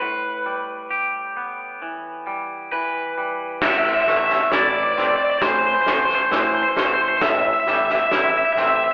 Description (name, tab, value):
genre	post-rock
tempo	67 BPM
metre	4/4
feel	straight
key	A minor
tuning	A4 = 440 Hz
part	overdriven semi-hollow guitar	melody	0.0-8.9 s	B4 to E5	-22 LUFS	equal	none
part	twangy electric guitar	arpeggios	0.0-8.9 s	A2 to G4	-27 LUFS	equal	spring reverb
part	growling fingered electric bass	bass	3.6-8.9 s	A1 to A2	-33 LUFS	equal	overdrive
part	loose indie drum kit	drums	3.6-8.7 s	crash cymbal, kick drum, snare drum	-26 LUFS	equal	none
part	glockenspiel with hard plastic mallets	arpeggios	4.1-8.9 s	C6 to E6	-30 LUFS	equal	none
room	wet stone room reverb, RT60 1.1 s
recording	band playing live in one room, telephone sound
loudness	-20 LUFS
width	mono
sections	0.0-3.6 A section; 3.6-8.9 B section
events	none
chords	0.0 Em/A; 3.6 Am; 7.2 C/A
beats	| 0.01 0.92 1.82 2.72 | 3.62 4.53 5.42 6.32 | 7.22 8.12